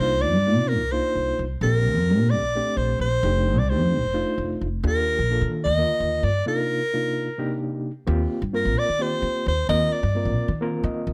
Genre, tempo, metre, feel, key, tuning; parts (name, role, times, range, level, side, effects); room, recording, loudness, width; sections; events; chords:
jazz; 260 BPM (eighths); 7/8; straight; Eb major from 8.1 s; A4 = 440 Hz
breathy soprano saxophone; melody; 0.0-10.6 s; Bb4 to Eb5; -26 LUFS; equal; slapback echo
overdriven reed electric piano; accompaniment; 0.0-11.1 s; C3 to Eb5; -31 LUFS; equal; fast tremolo
upright bass; bass; 0.0-11.1 s; F1 to Eb3; -26 LUFS; equal
light reverb; -23 LUFS; mono
0.0-8.1 A section; 8.1-11.1 B section
break 6.5-8.1; soprano saxophone solo 8.1-11.1; reed electric piano fill 10.6-11.1
0.0 Cm11; 1.6 Bbmaj13; 3.2 F13; 4.8 Ebmaj9; 6.5 Cm11; 8.1 Eb69